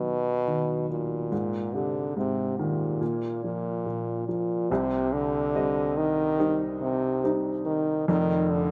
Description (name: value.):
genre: pop.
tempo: 71 BPM.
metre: 4/4.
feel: straight.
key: unclear.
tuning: A4 = 439 Hz.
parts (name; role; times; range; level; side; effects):
warm French horn; melody; 0.0-8.7 s; Bb2 to Eb3; -29 LUFS; equal; none.
warm upright piano; accompaniment; 0.0-8.7 s; F1 to Eb5; -31 LUFS; equal; none.
room: light reverb.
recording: none.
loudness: -27 LUFS.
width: mono.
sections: 0.0-4.7 A section; 4.7-8.7 B section.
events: none.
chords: 0.0 B/D#; 1.3 Ab; 3.0 Bb5; 4.7 Cm; 8.1 F7(no3).